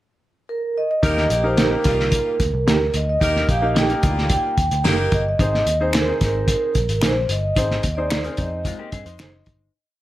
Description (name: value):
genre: uptempo 1960s-style soul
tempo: 110 BPM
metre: 4/4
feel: straight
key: Eb major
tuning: A4 = 439 Hz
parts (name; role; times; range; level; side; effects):
- vibraphone with soft mallets; melody; 0.5-9.4 s; Bb4 to G5; -22 LUFS; right 1 dB; none
- clear saxophone section; second line; 1.0-5.2 s; G3 to Bb4; -27 LUFS; left 1 dB; none
- clear concert grand piano; accompaniment; 1.0-8.9 s; Bb3 to C5; -27 LUFS; left 2 dB; none
- vintage muted picked electric bass; bass; 1.0-9.7 s; Gb1 to G2; -24 LUFS; equal; none
- cloth-damped thuddy drum kit; drums; 1.0-9.6 s; hi-hat, kick drum, snare drum; -21 LUFS; equal; none
- electric guitar through a small old amp; stabs; 1.6-9.3 s; Bb3 to C5; -25 LUFS; right 6 dB; none
- finger snaps; percussion; 5.9-9.3 s; none; -29 LUFS; left 2 dB; none
- electric guitar through a small old amp; riff; 8.7-9.7 s; Ab3 to C5; -38 LUFS; left 8 dB; none
room: light reverb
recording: none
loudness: -17 LUFS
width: side -15 dB against mid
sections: 0.0-1.0 pickup bar; 1.0-9.7 verse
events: fade-out 7.6-9.7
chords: 0.0 N.C.; 1.0 Eb; 5.4 Ab